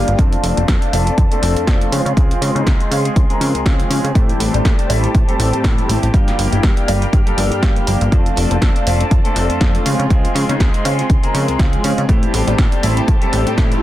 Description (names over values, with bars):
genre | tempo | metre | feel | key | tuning
filtered disco house | 121 BPM | 4/4 | swing 55% on 16ths | unclear | A4 = 441 Hz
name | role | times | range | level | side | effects
bright concert grand piano | accompaniment | 0.0-13.8 s | G3 to Bb4 | -21 LUFS | left 1 dB | phaser, sidechain pumping, low-pass filter
clear studio violin section | sustained chords | 0.0-13.8 s | F4 to F6 | -27 LUFS | left 2 dB | sidechain pumping, low-pass filter
direct-recorded clean electric guitar | riff | 0.0-13.8 s | E3 to A4 | -25 LUFS | equal | sidechain pumping, low-pass filter
plucky analog bass | bass | 0.0-13.7 s | F1 to Db3 | -19 LUFS | equal | sidechain pumping, low-pass filter
swell and riser | sound effects | 0.0-0.2, 12.7-13.8 s | none | -29 LUFS | right 3 dB | none
punchy analog drum machine | drums | 0.1-13.8 s | hi-hat, snare drum | -24 LUFS | right 1 dB | sidechain pumping on hats
tambourine | percussion | 0.1-13.7 s | none | barely audible | none | none
electronic kick drum | drums | 0.2-13.7 s | none | -14 LUFS | equal | overdrive
room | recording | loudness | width
little or no reverb | dense, heavily limited modern master | -13 LUFS | side -14 dB against mid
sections
0.0-13.8 A section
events
swell 0.0; filter sweep 0.0-13.8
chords
0.2 F6; 1.9 Dbmaj7; 4.2 Am7; 6.1 Gm7; 8.1 F6; 9.9 Dbmaj7; 12.1 Am7